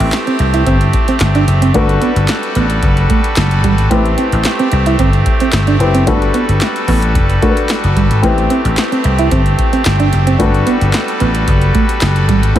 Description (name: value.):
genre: early-eighties boogie funk.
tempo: 111 BPM.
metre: 4/4.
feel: straight.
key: unclear.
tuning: A4 = 440 Hz.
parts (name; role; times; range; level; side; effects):
warm baby grand piano; accompaniment; 0.0-12.6 s; C4 to B4; -20 LUFS; left 4 dB; none.
pipe organ, trumpet; sustained chords; 0.0-12.6 s; G3 to B4; -18 LUFS; right 1 dB; none.
vintage slap bass; bass; 0.0-12.6 s; F#1 to C2; -13 LUFS; equal; none.
electro analog drum machine; drums; 0.0-12.6 s; handclaps, hi-hat, kick drum, snare drum; -17 LUFS; equal; none.
mellow electric guitar; riff; 0.3-12.6 s; G3 to E4; -18 LUFS; right 4 dB; wide subtle chorus.
room: light reverb.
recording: none.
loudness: -10 LUFS.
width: side -12 dB against mid.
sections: 0.0-12.6 A section.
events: none.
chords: 0.0 Am7; 1.7 Gmaj9; 3.9 Am7; 6.1 Gmaj9; 8.2 Am7; 10.4 Gmaj9.